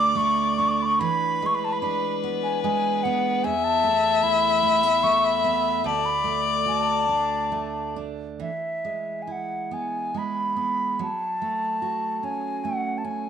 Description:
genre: celtic folk, Celtic slow air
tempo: 68-77 BPM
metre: 3/4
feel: rubato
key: E mixolydian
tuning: A4 = 441 Hz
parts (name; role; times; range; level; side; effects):
- bright baroque flute; melody; 0.0-13.3 s; E5 to D6; -24 LUFS; right 1 dB; none
- rich fiddle; second line; 0.0-8.0 s; B4 to E5; -24 LUFS; left 8 dB; none
- picked steel-string acoustic guitar; accompaniment; 0.0-13.3 s; D2 to F#4; -30 LUFS; right 10 dB; none
room: wet spring reverb, RT60 1.3 s, small room ambience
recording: 1960s-style stereo with parts hard left and right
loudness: -22 LUFS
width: side -8 dB against mid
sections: 0.0-8.4 A section; 8.4-13.3 B section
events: none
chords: 0.0 D; 1.0 E7; 3.4 Asus2/E; 5.8 D; 8.4 E; 11.0 F#m

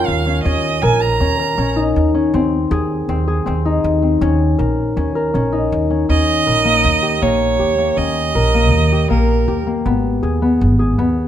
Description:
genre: contemporary instrumental, chamber music in an uneven meter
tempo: 160 BPM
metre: 5/4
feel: straight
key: Eb mixolydian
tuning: A4 = 439 Hz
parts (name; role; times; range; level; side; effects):
- rich violin; melody; 0.0-1.8, 6.1-9.6 s; Bb4 to Bb5; -17 LUFS; right 6 dB; none
- concert harp; arpeggios; 0.0-11.3 s; Bb3 to Bb4; -17 LUFS; left 3 dB; none
- upright bass; bass; 0.0-11.3 s; Ab1 to Eb2; -18 LUFS; equal; none
room: moderate recital hall reverb, RT60 1.4 s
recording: close, detailed microphones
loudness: -14 LUFS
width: side -10 dB against mid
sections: 0.0-6.1 A section; 6.1-11.3 B section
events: none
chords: 0.5 Eb5; 2.3 Ab/Eb; 4.2 Eb5; 6.1 Eb7; 9.9 Abm

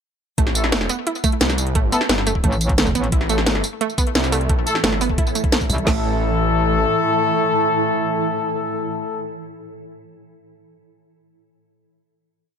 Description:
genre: dark technical drum and bass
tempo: 175 BPM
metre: 4/4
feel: straight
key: A minor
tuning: A4 = 440 Hz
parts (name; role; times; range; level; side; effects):
- analog pluck; arpeggios; 0.4-6.0 s; A3 to E4; -25 LUFS; right 4 dB; chorus, sidechain pumping, ping-pong delay
- wide detuned saw bass; bass; 0.4-6.9 s; G1 to C2; -22 LUFS; equal; chorus, tube saturation, sidechain pumping
- drum and bass drum kit; drums; 0.4-5.9 s; crash cymbal, kick drum, snare drum; -20 LUFS; equal; overdrive
- drum and bass drum kit; drums; 0.4-5.8 s; hi-hat, snare drum, tambourine; -21 LUFS; equal; none
- warm brass ensemble; stabs; 0.6-9.3 s; A3 to A4; -22 LUFS; left 4 dB; ping-pong delay
- metallic wobble bass; bass; 2.4-3.1, 5.7-5.9 s; A1 to C2; -21 LUFS; equal; chorus
- swarming drone; sustained chords; 4.4-9.3 s; A2 to A4; -26 LUFS; right 2 dB; built-in reverb, sidechain pumping
room: light reverb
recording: none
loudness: -17 LUFS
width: side -7 dB against mid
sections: 0.4-5.9 drop; 5.9-8.6 final chord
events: drop 0.4-5.9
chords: 0.4 A5

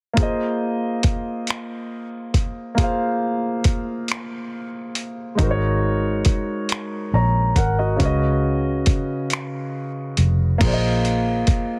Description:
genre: slow six-eight R&B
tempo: 46 BPM (dotted quarters)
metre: 6/8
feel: straight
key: Bb minor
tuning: A4 = 441 Hz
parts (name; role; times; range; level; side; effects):
- warm concert grand piano; accompaniment; 0.1-11.8 s; Db3 to Bb5; -26 LUFS; equal; none
- dusty soul sampler-style drum kit; drums; 0.2-11.7 s; crash cymbal, finger snaps, hi-hat, kick drum; -23 LUFS; equal; overdrive
- vintage muted fingered electric bass; bass; 5.4-11.5 s; F1 to Db2; -22 LUFS; equal; none
room: little or no reverb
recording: heavily compressed radio sound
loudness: -22 LUFS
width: mono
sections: 0.2-10.6 A section; 10.6-11.8 B section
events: none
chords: 0.2 Bb9sus4; 5.4 Ab9sus4; 8.0 Db9sus4; 10.6 Bb9sus4

